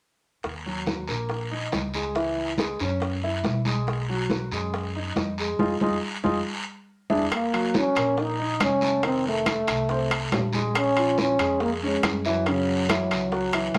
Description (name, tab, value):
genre	Afro-Cuban jazz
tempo	140 BPM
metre	4/4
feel	straight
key	Eb minor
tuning	A4 = 440 Hz
part	upright bass	bass	0.4-13.8 s	F1 to Gb2	-34 LUFS	equal	none
part	bongos	percussion	0.4-13.8 s	none	-35 LUFS	equal	none
part	congas	percussion	0.4-13.8 s	none	-32 LUFS	equal	none
part	guiro	percussion	0.4-13.8 s	none	-36 LUFS	equal	none
part	warm grand piano	accompaniment	0.7-13.8 s	Db3 to Fb5	-31 LUFS	equal	none
part	breathy trombone	melody	7.3-13.8 s	Gb3 to Eb4	-27 LUFS	equal	none
part	timbales	percussion	7.3-13.8 s	none	-30 LUFS	equal	none
room	wet studio reverb, RT60 0.5 s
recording	none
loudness	-25 LUFS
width	mono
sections	0.4-7.3 A section; 7.3-13.8 B section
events	band accent 5.6-7.3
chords	0.4 Ebm7; 2.2 Dbmadd11; 3.0 Gb5; 3.9 B6; 5.6 Fm7; 6.5 E7; 7.3 Ebm9; 9.0 F7; 10.7 Bbm7; 12.5 Gb7(no3)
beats	| 0.44 0.87 1.30 1.73 | 2.16 2.59 3.02 3.45 | 3.88 4.31 4.74 5.17 | 5.60 6.03 6.46 6.89 | 7.32 7.75 8.17 8.60 | 9.03 9.46 9.89 10.32 | 10.75 11.18 11.61 12.04 | 12.46 12.89 13.32 13.75